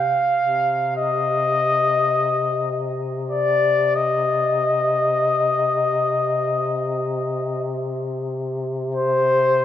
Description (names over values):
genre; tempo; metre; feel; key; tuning
caucasian folk, Caucasian lament; free time; none; none; C minor; A4 = 440 Hz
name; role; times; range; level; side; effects
warm trumpet; melody; 0.0-9.6 s; C5 to F5; -19 LUFS; left 2 dB; none
mellow duduk; drone; 0.0-9.6 s; C3; -26 LUFS; left 1 dB; none
room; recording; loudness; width
wet church reverb, RT60 2.6 s; none; -18 LUFS; side -10 dB against mid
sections
0.0-9.6 A section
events
slowing down 7.6-9.6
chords
none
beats
free time